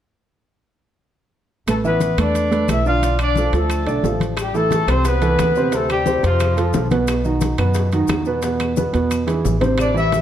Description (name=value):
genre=latin, salsa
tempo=177 BPM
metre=4/4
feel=straight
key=A minor from 4.4 s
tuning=A4 = 437 Hz
part: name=mellow horn section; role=melody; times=1.7-6.9, 9.8-10.2 s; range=F3 to F5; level=-20 LUFS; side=left 2 dB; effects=none
part: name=warm grand piano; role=accompaniment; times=1.7-10.2 s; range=B2 to E5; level=-20 LUFS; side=right 3 dB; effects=none
part: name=upright bass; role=bass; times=1.7-10.2 s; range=A1 to F#2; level=-21 LUFS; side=equal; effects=none
part: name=claves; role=percussion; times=1.7-10.0 s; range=none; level=-36 LUFS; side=left 6 dB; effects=none
part: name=congas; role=percussion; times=1.7-10.2 s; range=none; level=-26 LUFS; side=left 4 dB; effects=none
part: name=maracas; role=percussion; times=1.7-10.2 s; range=none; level=-39 LUFS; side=left 8 dB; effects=none
part: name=timbales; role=percussion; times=1.7-10.2 s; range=none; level=-31 LUFS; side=right 5 dB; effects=none
part: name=bongos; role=percussion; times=4.4-10.2 s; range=none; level=-30 LUFS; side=left 8 dB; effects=none
room=moderate large studio reverb, RT60 1.1 s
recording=dark, warm production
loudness=-16 LUFS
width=side -10 dB against mid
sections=1.7-4.4 A section; 4.4-10.2 B section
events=drum fill 8.8-9.8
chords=1.7 Asus2; 3.0 Bm7b5; 4.4 Amadd9; 5.7 Dm7; 7.1 B; 8.4 E